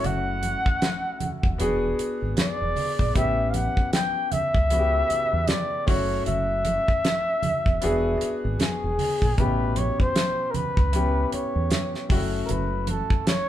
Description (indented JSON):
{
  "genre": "lush 1970s-style soul",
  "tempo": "77 BPM",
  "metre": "4/4",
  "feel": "swing 58% on 16ths",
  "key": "unclear",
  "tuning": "A4 = 440 Hz",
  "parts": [
    { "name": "breathy flugelhorn", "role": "melody", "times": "0.0-13.5 s", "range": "G#4 to G5", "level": "-26 LUFS", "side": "equal", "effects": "none" },
    { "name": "warm concert grand piano", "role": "accompaniment", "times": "0.0-13.5 s", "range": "B2 to G#4", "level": "-29 LUFS", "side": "left 3 dB", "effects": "none" },
    { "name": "fingered electric bass", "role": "bass", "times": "0.0-13.0 s", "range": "E1 to E2", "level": "-27 LUFS", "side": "equal", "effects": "none" },
    { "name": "damped 70s drum kit", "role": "drums", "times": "0.0-13.5 s", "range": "hi-hat, kick drum, snare drum", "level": "-25 LUFS", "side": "equal", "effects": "none" },
    { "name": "congas", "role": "percussion", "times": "0.0-13.5 s", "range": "none", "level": "-34 LUFS", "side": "right 4 dB", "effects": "none" }
  ],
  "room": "moderate large studio reverb, RT60 0.9 s",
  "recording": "band playing live in one room",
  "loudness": "-21 LUFS",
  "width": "side -12 dB against mid",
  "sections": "0.0-13.5 A section",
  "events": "none",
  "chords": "0.0 F#m7; 1.6 E7; 3.2 A7; 5.9 F#m7; 7.8 E7; 9.4 A7; 12.1 F#m7"
}